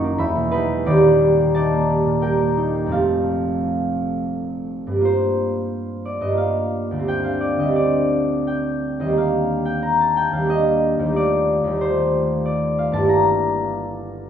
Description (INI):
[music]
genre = classical, solo harp piece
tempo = 81-95 BPM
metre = 3/4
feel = rubato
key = G minor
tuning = A4 = 440 Hz
[part]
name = concert harp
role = solo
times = 0.0-14.3 s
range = Eb1 to C#6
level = -18 LUFS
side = equal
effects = none
[sound]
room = wet recital hall reverb, RT60 1.4 s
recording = none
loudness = -17 LUFS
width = side -8 dB against mid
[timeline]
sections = 0.0-5.0 A section; 5.0-14.3 B section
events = none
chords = 0.2 E69; 0.8 Ebmaj7; 2.9 Fadd9; 5.0 Gm7; 9.2 Ebmaj7; 11.2 Fadd9/Eb; 13.1 Gm6